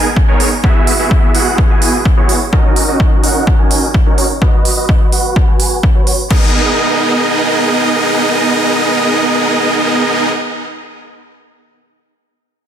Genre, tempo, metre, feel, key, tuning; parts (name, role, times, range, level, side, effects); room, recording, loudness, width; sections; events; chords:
EDM, festival progressive house; 127 BPM; 4/4; straight; G# minor; A4 = 439 Hz
supersaw chords; riff; 0.0-10.3 s; B3 to G#5; -13 LUFS; right 1 dB; sidechain pumping, low-pass filter, digital delay
electronic kick drum; drums; 0.2-6.4 s; -11 LUFS; equal; overdrive
big-room dance drum kit; drums; 0.4-6.4 s; crash cymbal, hi-hat; -18 LUFS; right 3 dB; overdrive
light reverb, digital ambience; dense, heavily limited modern master; -10 LUFS; side -9 dB against mid
0.0-6.3 A section; 6.3-10.1 B section
filter sweep on supersaw synth 0.0-6.3
0.0 G#madd9; 0.6 Eadd9; 2.5 D#m7; 4.4 B; 6.3 G#madd9